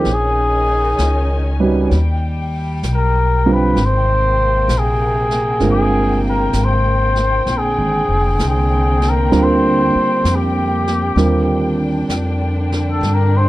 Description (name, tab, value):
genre	jazz ballad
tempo	65 BPM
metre	4/4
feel	swing 67% on 8ths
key	unclear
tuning	A4 = 440 Hz
part	trumpet with cup mute	melody	0.0-13.5 s	G4 to C5	-18 LUFS	left 1 dB	none
part	dark grand piano	accompaniment	0.0-13.5 s	D3 to B4	-18 LUFS	right 3 dB	none
part	muted studio string section	sustained chords	0.0-13.5 s	C3 to Ab5	-23 LUFS	equal	none
part	upright bass	bass	0.0-13.5 s	F1 to G2	-17 LUFS	equal	none
part	jazz brush drum kit	drums	0.0-13.5 s	brushed snare drum, hi-hat, snare drum	-28 LUFS	equal	none
room	small room reverb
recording	dry, close 1970s-style studio recording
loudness	-13 LUFS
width	side -16 dB against mid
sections	0.0-13.5 A section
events	muted trumpet solo 0.0-13.5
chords	0.1 Bbm7; 1.9 Ebaug; 3.8 Abmaj9; 7.5 Bb13; 11.2 Ebmaj7